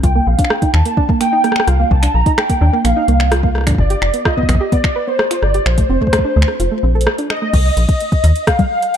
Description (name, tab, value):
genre	IDM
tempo	128 BPM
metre	4/4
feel	straight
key	C dorian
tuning	A4 = 440 Hz
part	warbly nostalgic lead	melody	0.0-9.0 s	C5 to Bb5	-18 LUFS	equal	tremolo, ensemble chorus
part	soft round pluck	arpeggios	0.0-7.5 s	A3 to B4	-21 LUFS	right 4 dB	chorus, cassette tape, ping-pong delay
part	metallic FM bass	bass	0.0-8.3 s	F1 to Eb2	-14 LUFS	equal	none
part	booming analog drum machine	drums	0.0-9.0 s	congas, crash cymbal, finger snaps, hi-hat, rim click	-20 LUFS	equal	none
part	electronic kick drum	drums	0.0-8.7 s	none	-16 LUFS	equal	none
room	light reverb, digital ambience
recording	dark, warm production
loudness	-12 LUFS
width	side -9 dB against mid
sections	0.0-7.5 A section; 7.5-9.0 B section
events	none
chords	0.0 Cm11; 3.8 G7; 5.7 Bbmaj9; 7.5 Cm7